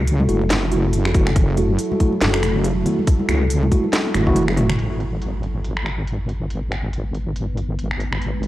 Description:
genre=deep dubstep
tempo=140 BPM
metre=4/4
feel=swing 57% on 16ths, half-time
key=G# phrygian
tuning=A4 = 439 Hz
part: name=deep dark ambient pad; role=sustained chords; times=0.0-8.5 s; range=F#3 to B4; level=-27 LUFS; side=equal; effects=chorus, built-in reverb
part: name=wobble bass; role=bass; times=0.0-8.5 s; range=F#1 to C#2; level=-21 LUFS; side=equal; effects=chorus, tube saturation
part: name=garage drum kit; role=drums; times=0.1-8.5 s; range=finger snaps, hi-hat, snare drum, toms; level=-24 LUFS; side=equal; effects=low-pass filter on hats, low-pass filter on snare, low-pass filter on toms, low-pass filter on room
part: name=congas and bongos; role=percussion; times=0.2-4.8 s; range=none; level=-27 LUFS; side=left 1 dB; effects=dub echo
part: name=mellow tine electric piano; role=stabs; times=0.3-4.7 s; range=A3 to F#4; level=-24 LUFS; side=right 1 dB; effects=medium stereo tremolo, dub echo
part: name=electronic kick drum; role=drums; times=1.1-4.3 s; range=none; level=-17 LUFS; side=equal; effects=none
room=little or no reverb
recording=dry, gritty hardware recording, cassette tape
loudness=-17 LUFS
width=side -15 dB against mid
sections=0.0-4.8 A section; 4.8-8.5 B section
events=drum fill 3.9-4.8; kick drops out 4.4-4.8; filter sweep on ambient pad 4.8-8.5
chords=0.0 F#m7; 4.8 G#m

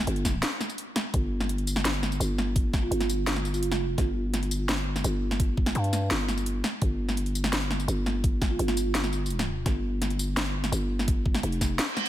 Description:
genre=half-time drum and bass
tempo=169 BPM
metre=4/4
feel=half-time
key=unclear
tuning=A4 = 440 Hz
part: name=growling 808-style bass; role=bass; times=0.0-11.8 s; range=F1 to G2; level=-28 LUFS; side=equal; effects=none
part: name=drum and bass drum kit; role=drums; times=0.1-12.1 s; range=hi-hat, snare drum, tambourine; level=-30 LUFS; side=equal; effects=overdrive
part: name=electronic kick drum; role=drums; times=0.2-11.7 s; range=none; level=-26 LUFS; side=equal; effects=overdrive
part: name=marimba with soft mallets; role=melody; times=2.8-3.7, 8.5-8.7 s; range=F4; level=-35 LUFS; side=right 5 dB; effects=diffuse ambient delay
part: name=reverse cymbal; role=sound effects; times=11.9-12.1 s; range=none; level=-29 LUFS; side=right 4 dB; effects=none
room=light reverb, digital ambience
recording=none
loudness=-25 LUFS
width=side -13 dB against mid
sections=0.0-1.1 A section; 1.1-12.1 A section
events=drop 0.0-1.1, 1.1-12.1; break 0.4-1.1; reverse cymbal 11.9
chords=0.0 G5; 1.1 N.C.

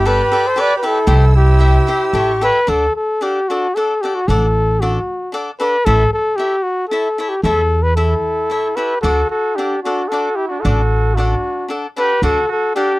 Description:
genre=mexican folk, mariachi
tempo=114 BPM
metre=3/4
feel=rubato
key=D major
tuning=A4 = 436 Hz
part: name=mellow trumpet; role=melody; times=0.0-13.0 s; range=F#4 to D5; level=-16 LUFS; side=left 1 dB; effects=none
part: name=warm trumpet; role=second line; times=0.0-2.4, 7.9-13.0 s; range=D4 to B4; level=-24 LUFS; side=right 6 dB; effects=none
part: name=rich symphonic violin section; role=sustained chords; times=0.0-2.7 s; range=A4 to E6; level=-30 LUFS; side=right 3 dB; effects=none
part: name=upright bass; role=bass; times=0.0-12.4 s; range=G1 to E2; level=-15 LUFS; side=equal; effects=none
part: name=cavaquinho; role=accompaniment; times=0.1-12.9 s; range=D4 to F#5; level=-22 LUFS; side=left 2 dB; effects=none
room=little or no reverb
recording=dry, close 1970s-style studio recording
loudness=-14 LUFS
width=side -19 dB against mid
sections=0.0-2.7 A section; 2.7-13.0 B section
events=none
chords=0.0 Gadd9; 1.1 C; 2.1 A7; 2.7 D; 5.9 A; 9.0 D

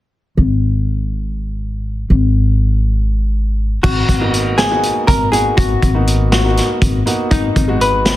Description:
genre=progressive instrumental, band music in an uneven meter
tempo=242 BPM (eighths)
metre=7/8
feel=straight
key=G# minor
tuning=A4 = 441 Hz
part: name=upright bass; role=bass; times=0.4-8.2 s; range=G#1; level=-15 LUFS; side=equal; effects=none
part: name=vintage hollow-body jazz guitar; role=melody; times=3.8-8.2 s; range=D#4 to B4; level=-18 LUFS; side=left 2 dB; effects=none
part: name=vintage drum kit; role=drums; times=3.8-8.2 s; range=crash cymbal, hi-hat, kick drum, snare drum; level=-17 LUFS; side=equal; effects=none
part: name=warm grand piano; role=accompaniment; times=4.2-8.1 s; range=G#3 to F#4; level=-20 LUFS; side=right 2 dB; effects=none
room=light reverb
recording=dense, heavily limited modern master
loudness=-13 LUFS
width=side -15 dB against mid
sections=0.4-3.8 A section; 3.8-8.2 B section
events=none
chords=0.4 N.C.; 3.8 G#m7

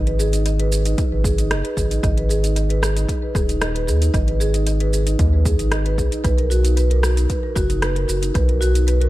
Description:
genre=organic downtempo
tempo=114 BPM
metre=4/4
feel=straight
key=unclear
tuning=A4 = 440 Hz
part: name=marimba with soft mallets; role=arpeggios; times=0.0-9.1 s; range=Eb4 to Eb5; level=-23 LUFS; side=right 1 dB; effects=dub echo
part: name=round analog bass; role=bass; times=0.0-9.1 s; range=Eb1 to Eb2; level=-18 LUFS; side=equal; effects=none
part: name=deep house drum kit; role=drums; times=0.1-9.1 s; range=hi-hat, rim click, shaker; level=-27 LUFS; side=right 1 dB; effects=overdrive, analog delay
part: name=electronic kick drum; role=drums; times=1.0-8.5 s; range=none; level=-22 LUFS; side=equal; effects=overdrive
room=little or no reverb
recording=echo-heavy mix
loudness=-17 LUFS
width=side -16 dB against mid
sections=0.0-9.1 A section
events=none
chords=0.0 Abm; 6.2 Bmaj7

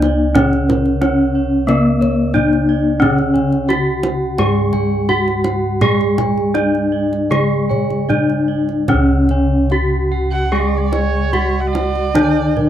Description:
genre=Javanese gamelan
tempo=74-90 BPM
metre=4/4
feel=straight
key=C# pelog barang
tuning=A4 = 439 Hz
part: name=gamelan-type bronze metallophone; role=melody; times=0.0-12.7 s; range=A#3+20c to G#4-40c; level=-17 LUFS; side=left 1 dB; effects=none
part: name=gamelan-type bronze metallophone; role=accompaniment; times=0.0-12.7 s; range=C#3 to A#3+20c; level=-21 LUFS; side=right 1 dB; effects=none
part: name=gamelan-type bossed gongs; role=arpeggios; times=0.0-12.7 s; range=A#4+20c to G#5-40c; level=-27 LUFS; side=left 4 dB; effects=none
part: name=gamelan-type bronze metallophone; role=arpeggios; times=0.0-12.7 s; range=A#4+20c to G#5-40c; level=-26 LUFS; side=right 5 dB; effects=none
part: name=gamelan-type bossed gongs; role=bass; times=0.0-12.7 s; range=C#2 to G#4-40c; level=-20 LUFS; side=equal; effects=none
part: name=kendang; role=percussion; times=0.0-12.7 s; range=none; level=-22 LUFS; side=right 2 dB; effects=none
part: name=dark erhu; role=second line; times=10.3-12.7 s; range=C#5 to F#5+28c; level=-22 LUFS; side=right 7 dB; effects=none
room=light reverb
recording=dry, close 1970s-style studio recording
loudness=-13 LUFS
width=side -10 dB against mid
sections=0.0-8.9 A section; 8.9-12.7 B section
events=none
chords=none

